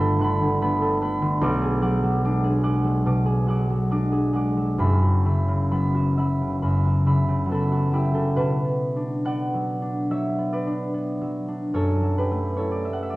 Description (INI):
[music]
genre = classical, solo harp piece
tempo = 70 BPM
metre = 4/4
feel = uneven beats, rubato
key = B minor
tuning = A4 = 445 Hz
[part]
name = concert harp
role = solo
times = 0.0-13.2 s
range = F#1 to D6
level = -20 LUFS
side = equal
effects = none
[sound]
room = wet recital hall reverb, RT60 1.4 s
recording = worn, warbling old tape, cassette tape, warbly pitch drift, nothing above 10.8 kHz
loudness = -20 LUFS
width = side -19 dB against mid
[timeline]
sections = 0.0-8.4 A section; 8.4-13.2 B section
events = none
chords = 0.0 Gmaj9; 1.4 Bm6; 4.8 F#7sus4; 8.4 Bmadd9; 11.8 F#m7